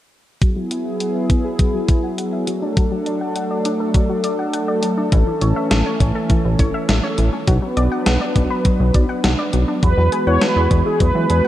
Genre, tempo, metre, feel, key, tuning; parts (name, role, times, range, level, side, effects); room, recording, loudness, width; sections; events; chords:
synth-pop; 102 BPM; 4/4; straight; E mixolydian; A4 = 445 Hz
chorused pulse-width pad; sustained chords; 0.4-11.5 s; E3 to B4; -21 LUFS; equal
analog pluck; arpeggios; 0.4-11.5 s; E3 to F#5; -25 LUFS; left 2 dB; chorus, low-pass filter, tape echo
gated 80s digital drum machine; drums; 0.4-11.4 s; hi-hat, kick drum, snare drum; -18 LUFS; equal; gated reverb, gated reverb snare
chorused synth bass; bass; 5.1-11.4 s; A1 to E3; -17 LUFS; equal
mellow synth brass; melody; 9.8-11.5 s; G#4 to C#5; -18 LUFS; right 1 dB; chorus
moderate lush hall reverb, RT60 2.6 s; dark, warm production; -16 LUFS; side -13 dB against mid
0.4-9.8 A section; 9.8-11.5 B section
filter sweep on synth arpeggio sound 0.4-9.8
0.4 Eadd9; 2.5 D; 5.1 A; 7.5 Bm; 9.8 Eadd9